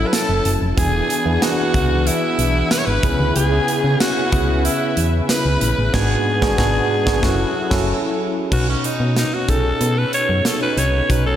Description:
1980s-style pop; 93 BPM; 4/4; straight; A4 = 440 Hz
breathy alto saxophone; melody; 0.0-11.4 s; C#4 to C#5; -21 LUFS; equal; diffuse ambient delay
warm studio violin section; second line; 0.0-5.9 s; E5 to C#6; -28 LUFS; equal; diffuse ambient delay
mellow tine electric piano; accompaniment; 0.0-11.4 s; G#2 to C#5; -22 LUFS; right 1 dB; overdrive, medium stereo tremolo
brassy analog pad; sustained chords; 0.0-11.4 s; C#3 to C#5; -27 LUFS; left 1 dB; chorus
solid FM bass; bass; 0.0-11.3 s; E1 to C#3; -20 LUFS; equal
modern studio drum kit; drums; 0.1-11.2 s; crash cymbal, hi-hat, kick drum, snare drum, tambourine; -22 LUFS; right 1 dB
moderate lush hall reverb, RT60 2.7 s; dreamy mix soaked in reverb; -16 LUFS; side -10 dB against mid
0.0-8.5 A section; 8.5-11.4 B section
band accent 5.9-8.5; alto saxophone solo 8.5-11.4
0.0 F#m7; 0.8 E7; 3.0 C#m7; 5.9 G#m7b5; 7.2 F#m7; 8.5 Badd9
0.13 | 0.78 1.42 2.07 2.71 | 3.36 4.00 4.65 5.29 | 5.94 6.58 7.23 7.87 | 8.52 9.16 9.81 10.45 | 11.10

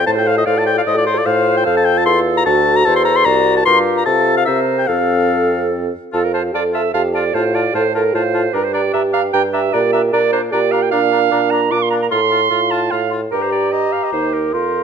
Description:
quick classical-period movement for wind quintet; 150 BPM; 3/4; straight; F major; A4 = 441 Hz
concert flute; melody; 0.0-14.8 s; A4 to C6; -23 LUFS; left 10 dB
warm oboe; second line; 0.0-14.8 s; D4 to C6; -19 LUFS; left 5 dB
bright clarinet; accompaniment; 0.0-14.8 s; F#4 to D6; -20 LUFS; right 10 dB
warm French horn; accompaniment; 0.0-14.8 s; C4 to Bb4; -22 LUFS; equal
mellow bassoon; bass; 0.0-14.8 s; C2 to C3; -18 LUFS; right 3 dB
moderate recital hall reverb, RT60 1.5 s; -13 LUFS; side -7 dB against mid
0.0-6.1 A section; 6.1-14.8 B section
0.1 F/A; 1.3 F; 2.5 D7; 3.7 Gm7; 4.1 F/C; 4.5 C7; 4.9 F; 7.3 F/A; 8.5 Gm; 9.7 Gm/Bb; 12.1 F/A; 13.3 Eb/G
| 0.07 0.47 0.86 | 1.26 1.66 2.06 | 2.46 2.86 3.26 | 3.66 4.06 4.47 | 4.88 5.30 5.72 | 6.13 6.54 6.94 | 7.34 7.74 8.14 | 8.54 8.94 9.33 | 9.73 10.13 10.52 | 10.92 11.32 11.72 | 12.11 12.51 12.91 | 13.32 13.72 14.12 | 14.54

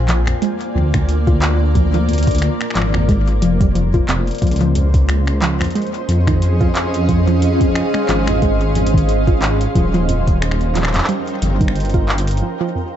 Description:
IDM; 90 BPM; 4/4; swing 56% on 16ths; A4 = 440 Hz
granular cloud pad; sustained chords; 0.0-12.4 s; Bb3 to Ab5; -21 LUFS; equal; built-in reverb, vintage 12-bit sampler grit
dark detuned saw bass; bass; 0.0-12.4 s; Eb1 to F2; -17 LUFS; equal; tube saturation
warbly dusty pluck; arpeggios; 0.1-12.8 s; F2 to F4; -22 LUFS; right 1 dB; chorus, tape echo
booming analog drum machine; drums; 0.1-12.4 s; finger snaps, handclaps, hi-hat, toms; -24 LUFS; left 1 dB; ping-pong delay
electronic kick drum; drums; 0.9-12.1 s; -17 LUFS; equal; overdrive
pulsing gated texture; texture; 4.5-12.4 s; C5 to C6; -30 LUFS; right 3 dB; chorus, built-in reverb
light reverb, digital ambience; dark, warm production, nothing above 8.0 kHz; -14 LUFS; side -10 dB against mid
0.0-13.0 A section
break 12.4-13.0
0.0 Bb9; 4.4 Dbmaj7; 9.8 Eb9
0.42 1.09 | 1.75 2.42 3.09 3.75 | 4.42 5.09 5.75 6.42 | 7.09 7.75 8.42 9.09 | 9.75 10.42 11.09 11.75 | 12.42

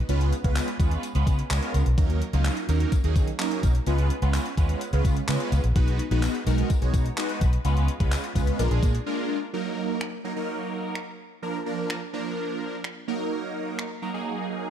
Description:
dance-pop; 127 BPM; 4/4; straight; Eb harmonic minor from 9.5 s; A4 = 440 Hz
big bright polysynth; accompaniment; 0.1-14.7 s; F3 to Db5; -28 LUFS; right 2 dB; chorus, phaser, sidechain pumping
vintage muted fingered electric bass; bass; 0.1-9.0 s; Bb1 to Eb3; -24 LUFS; equal; sidechain pumping
gated 80s digital drum machine; drums; 0.1-13.9 s; finger snaps, handclaps, hi-hat, kick drum; -26 LUFS; equal; gated reverb, overdrive
tambourine; percussion; 0.3-8.9 s; -45 LUFS; left 8 dB
light reverb, digital ambience; dark, warm production; -23 LUFS; side -10 dB against mid
0.0-9.5 A section; 9.5-14.7 B section
drop 0.0-9.5; break 9.1-9.5
0.1 Db7; 2.0 Ebm7; 3.9 Db7; 5.8 B6; 7.6 Db7; 8.6 Bb7; 9.5 Ebm; 11.4 Bb; 13.1 Ebm
| 0.09 0.56 1.03 1.50 | 1.98 2.45 2.92 3.40 | 3.87 4.34 4.81 5.29 | 5.76 6.23 6.70 7.17 | 7.65 8.12 8.59 9.06 | 9.54 10.01 10.48 10.95 | 11.43 11.90 12.37 12.84 | 13.32 13.79 14.26

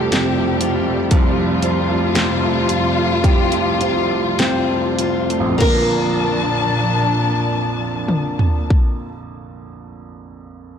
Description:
pop ballad; 48-62 BPM; 4/4; straight; Bb major; A4 = 440 Hz
nylon-string guitar; melody; 0.0-8.7 s; A4 to Bb4; -24 LUFS; right 1 dB; digital delay
clear baby grand piano; accompaniment; 0.0-10.8 s; F1 to Bb4; -22 LUFS; right 5 dB
warm studio string section; sustained chords; 0.0-8.7 s; F2 to A5; -20 LUFS; left 2 dB
picked steel-string acoustic guitar; arpeggios; 0.0-9.1 s; F3 to G4; -23 LUFS; left 4 dB; digital delay
pop drum kit; drums; 0.1-9.0 s; crash cymbal, hi-hat, kick drum, snare drum, toms; -18 LUFS; equal
light reverb, studio ambience; blown-out, overdriven recording, overdrive; -15 LUFS; side -8 dB against mid
0.0-5.6 A section; 5.6-10.6 B section
slowing down 0.0-5.6
0.0 Fadd9; 5.6 Bbmaj7
0.12 | 1.11 2.15 3.24 4.39 | 5.61 6.85 8.09 9.33

